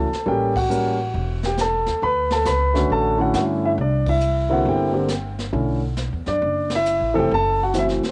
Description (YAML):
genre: jazz piano trio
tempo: 136 BPM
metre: 4/4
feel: swing 66% on 8ths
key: B minor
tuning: A4 = 444 Hz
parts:
  - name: dark baby grand piano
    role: melody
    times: 0.0-8.1 s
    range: D3 to B5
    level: -22 LUFS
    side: equal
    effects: cassette tape
  - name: upright bass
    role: bass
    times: 0.0-8.1 s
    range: E1 to G2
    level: -27 LUFS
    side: equal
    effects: none
  - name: jazz brush drum kit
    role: drums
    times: 0.1-8.1 s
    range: brushed snare drum, hi-hat, kick drum, ride cymbal, snare drum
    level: -34 LUFS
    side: equal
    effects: none
room: light reverb, small room ambience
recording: home recording on cassette, nothing above 10.4 kHz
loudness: -21 LUFS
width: mono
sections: 0.0-8.1 A section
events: band accent 0.5, 4.0, 6.6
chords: 0.3 A7b9; 2.0 Dmaj7; 3.8 C9; 5.5 Bm11; 7.3 F#m7b5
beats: | 0.27 0.70 1.14 1.58 | 2.02 2.46 2.90 3.34 | 3.78 4.22 4.66 5.10 | 5.54 5.98 6.42 6.86 | 7.30 7.74